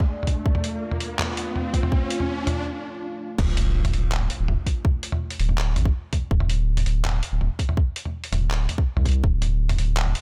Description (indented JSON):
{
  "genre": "half-time drum and bass",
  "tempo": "164 BPM",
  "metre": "4/4",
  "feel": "half-time",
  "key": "D minor",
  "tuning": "A4 = 440 Hz",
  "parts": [
    { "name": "deep dark ambient pad", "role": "sustained chords", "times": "0.0-3.4 s", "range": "A3 to D5", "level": "-35 LUFS", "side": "equal", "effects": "chorus, built-in reverb, sidechain pumping" },
    { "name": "electronic kick drum", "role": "drums", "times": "0.0-9.3 s", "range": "none", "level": "-24 LUFS", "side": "equal", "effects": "none" },
    { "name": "riser and impact", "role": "sound effects", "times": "0.0-4.8 s", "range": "none", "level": "-33 LUFS", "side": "equal", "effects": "none" },
    { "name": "boom bap sampler-style drum kit", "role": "drums", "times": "0.2-10.2 s", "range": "crash cymbal, handclaps, hi-hat, toms", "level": "-30 LUFS", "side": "equal", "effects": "none" },
    { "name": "saturated sub bass", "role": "bass", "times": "3.4-10.1 s", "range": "D1 to C2", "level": "-24 LUFS", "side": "equal", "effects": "none" }
  ],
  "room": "digital ambience",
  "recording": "none",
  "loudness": "-24 LUFS",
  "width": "mono",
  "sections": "0.0-3.4 A section; 3.4-10.2 B section",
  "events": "build-up 0.0-3.4; riser 0.0-2.7; break 2.7-3.4; drop 3.4-10.2; impact 3.4-4.8",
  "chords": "0.0 D5"
}